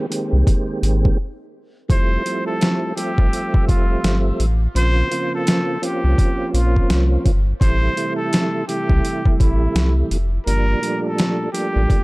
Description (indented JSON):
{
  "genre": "hip hop, boom-bap hip-hop",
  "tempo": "84 BPM",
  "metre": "4/4",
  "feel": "swing 61% on 16ths",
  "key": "F major",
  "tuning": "A4 = 441 Hz",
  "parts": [
    { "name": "tonewheel organ", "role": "accompaniment", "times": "0.0-12.0 s", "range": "Bb2 to E5", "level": "-23 LUFS", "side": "right 2 dB", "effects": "chorus vibrato, slow rotary speaker, high-pass filter, low-pass filter" },
    { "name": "boom bap sampler-style drum kit", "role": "drums", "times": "0.1-12.0 s", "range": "hi-hat, kick drum, snare drum", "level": "-18 LUFS", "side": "equal", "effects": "overdrive" },
    { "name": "warm sub bass", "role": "bass", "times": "0.3-11.9 s", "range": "F1 to C2", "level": "-18 LUFS", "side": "equal", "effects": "none" },
    { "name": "trumpet with straight mute", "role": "melody", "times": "1.9-12.0 s", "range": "E4 to C5", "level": "-25 LUFS", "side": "equal", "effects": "high-pass filter, low-pass filter, tape echo" }
  ],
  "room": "little or no reverb",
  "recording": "dark, warm production",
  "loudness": "-16 LUFS",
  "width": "side -22 dB against mid",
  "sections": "0.0-1.9 A section; 1.9-12.0 B section",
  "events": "break 0.0-1.9",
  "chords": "0.0 Abmaj7; 1.9 Fmaj9; 4.8 Bbmadd9; 7.6 Am7; 10.5 Gm9"
}